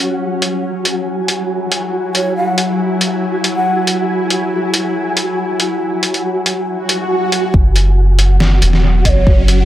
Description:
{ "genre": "deep dubstep", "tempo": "139 BPM", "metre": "4/4", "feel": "half-time", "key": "unclear", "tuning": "A4 = 440 Hz", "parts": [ { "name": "bowed-like drone", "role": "sustained chords", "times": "0.0-9.7 s", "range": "F#3 to E4", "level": "-20 LUFS", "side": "left 1 dB", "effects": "built-in reverb" }, { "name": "flickering grainy texture", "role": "texture", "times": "0.0-9.7 s", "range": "F#4 to G#5", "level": "-21 LUFS", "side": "right 1 dB", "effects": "built-in reverb" }, { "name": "trip hop sampler-style drum kit", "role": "drums", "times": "0.4-9.6 s", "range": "hi-hat, snare drum", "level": "-17 LUFS", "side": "equal", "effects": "overdrive, analog delay" }, { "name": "mellow hollow long shakuhachi", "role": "melody", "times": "2.1-4.0, 9.0-9.4 s", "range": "C#5 to F#5", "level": "-20 LUFS", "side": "equal", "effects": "low-pass filter, dub echo" }, { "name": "swell and riser", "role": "sound effects", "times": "6.8-9.7 s", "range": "none", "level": "-23 LUFS", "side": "right 2 dB", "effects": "none" }, { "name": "soft dub sub bass", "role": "bass", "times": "7.5-9.7 s", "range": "E1 to F#1", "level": "-11 LUFS", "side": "equal", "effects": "none" }, { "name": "electronic kick drum", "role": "drums", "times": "7.5-9.4 s", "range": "none", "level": "-12 LUFS", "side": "equal", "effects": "none" } ], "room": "light reverb", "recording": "echo-heavy mix", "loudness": "-13 LUFS", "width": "side -13 dB against mid", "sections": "0.0-7.5 A section; 7.5-9.7 B section", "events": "swell 6.8-7.5; build-up 7.5-9.7; riser 7.5-9.7; filter sweep on synth drone 7.5-9.7", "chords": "0.0 F#5" }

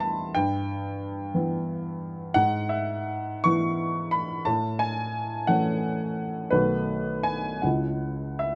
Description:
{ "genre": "classical, romantic character piece for solo piano", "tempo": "58 BPM (dotted quarters)", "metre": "6/8", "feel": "uneven beats, rubato", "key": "E major", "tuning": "A4 = 445 Hz", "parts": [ { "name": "warm upright piano", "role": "solo", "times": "0.0-8.6 s", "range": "B1 to C#6", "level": "-27 LUFS", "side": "equal", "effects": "none" } ], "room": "light reverb", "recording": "none", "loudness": "-27 LUFS", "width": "mono", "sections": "0.0-8.6 A section", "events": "none", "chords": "0.3 Em/G; 2.3 E/G#; 4.5 F#m7/A; 6.5 B7; 7.6 C#m" }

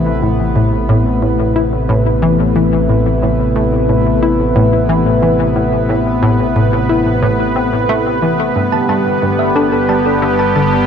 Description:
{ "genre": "ambient, sequencer-driven space music", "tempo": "90 BPM", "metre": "4/4", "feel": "straight", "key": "A minor", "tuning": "A4 = 440 Hz", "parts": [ { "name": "sweeping resonant pad", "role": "sustained chords", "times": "0.0-10.9 s", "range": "C3 to B4", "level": "-14 LUFS", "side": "equal", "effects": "chorus" }, { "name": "analog pluck", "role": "riff", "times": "0.0-10.8 s", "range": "G2 to E4", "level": "-16 LUFS", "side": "left 2 dB", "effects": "chorus, ping-pong delay" }, { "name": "fat analog bass", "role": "bass", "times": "0.0-10.9 s", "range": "G1 to A1", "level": "-20 LUFS", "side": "right 1 dB", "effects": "none" }, { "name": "bubbling stepped-filter texture", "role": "texture", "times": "2.9-10.9 s", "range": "B3 to B4", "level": "-27 LUFS", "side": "right 2 dB", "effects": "none" }, { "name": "thumb-piano-like synth pluck", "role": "arpeggios", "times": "8.7-10.7 s", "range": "A4 to A5", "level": "-19 LUFS", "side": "right 3 dB", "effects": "chorus, auto-pan, ping-pong delay" } ], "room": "wet huge ambient reverb, RT60 8.1 s", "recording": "cassette tape", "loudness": "-11 LUFS", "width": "side -7 dB against mid", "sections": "0.0-10.9 A section", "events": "none", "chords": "0.0 Amadd9; 8.6 G" }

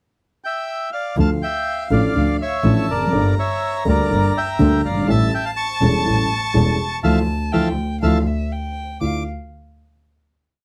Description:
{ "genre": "tango", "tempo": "123 BPM", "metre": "4/4", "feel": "rubato", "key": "D harmonic minor", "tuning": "A4 = 440 Hz", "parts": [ { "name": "bandoneon", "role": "melody", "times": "0.4-9.2 s", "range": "Bb4 to D6", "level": "-25 LUFS", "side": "equal", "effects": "none" }, { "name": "warm violin", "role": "second line", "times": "1.2-9.2 s", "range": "E5 to Bb5", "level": "-32 LUFS", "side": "equal", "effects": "none" }, { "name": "dark upright piano", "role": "accompaniment", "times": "1.2-9.2 s", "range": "E1 to A4", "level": "-22 LUFS", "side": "equal", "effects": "none" }, { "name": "clear double bass", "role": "bass", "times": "1.2-9.2 s", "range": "E1 to D2", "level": "-22 LUFS", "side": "equal", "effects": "none" } ], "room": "little or no reverb", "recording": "dry, close 1970s-style studio recording", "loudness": "-19 LUFS", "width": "mono", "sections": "0.0-1.2 pickup bar; 1.2-9.0 A section; 9.0-10.6 final chord", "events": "band accent 7.0-9.0", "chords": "0.0 Dmadd9; 1.2 Dm; 3.1 Gmadd9; 5.1 A7; 7.0 Dmadd9; 8.5 N.C.; 9.0 Dmadd9" }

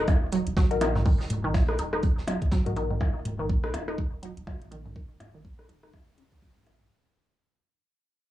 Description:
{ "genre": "minimal techno", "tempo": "123 BPM", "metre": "4/4", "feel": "swing 58% on 16ths", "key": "Eb minor", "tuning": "A4 = 439 Hz", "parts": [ { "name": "resonant blip pluck", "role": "riff", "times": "0.0-6.8 s", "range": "Bb2 to Eb4", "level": "-32 LUFS", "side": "right 2 dB", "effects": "chorus, phaser, sidechain pumping, cassette tape, tape echo" }, { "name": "punchy sub bass", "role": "bass", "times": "0.0-6.9 s", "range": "Eb1 to Bb1", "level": "-33 LUFS", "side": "right 1 dB", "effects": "sidechain pumping" }, { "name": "electronic kick drum", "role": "drums", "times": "0.1-6.5 s", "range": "none", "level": "-24 LUFS", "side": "equal", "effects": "cassette tape" }, { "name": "soft brush drum kit", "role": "drums", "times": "0.1-2.9 s", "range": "hi-hat, snare drum", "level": "-44 LUFS", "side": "right 1 dB", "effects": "high-pass filter on hats, cassette tape, high-pass filter on snare, high-pass filter on room" }, { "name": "minimal click drum kit", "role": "percussion", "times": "0.1-6.9 s", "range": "percussion blips, rim click, toms", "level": "-31 LUFS", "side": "left 1 dB", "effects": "cassette tape, analog delay" }, { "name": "electronic hi-hat", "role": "drums", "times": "0.3-6.8 s", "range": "none", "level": "-45 LUFS", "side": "equal", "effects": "cassette tape" }, { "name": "filtered dub chord stab", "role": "stabs", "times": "0.7-2.8 s", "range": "Eb4 to Bb4", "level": "-31 LUFS", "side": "left 7 dB", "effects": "phaser, cassette tape, analog delay" } ], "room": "light reverb", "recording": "home recording on cassette, small room ambience", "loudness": "-24 LUFS", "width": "side -14 dB against mid", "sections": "0.0-6.9 A section", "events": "fade-out 0.0-6.9; filter sweep on synth pluck 0.0-6.9", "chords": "0.0 Eb5" }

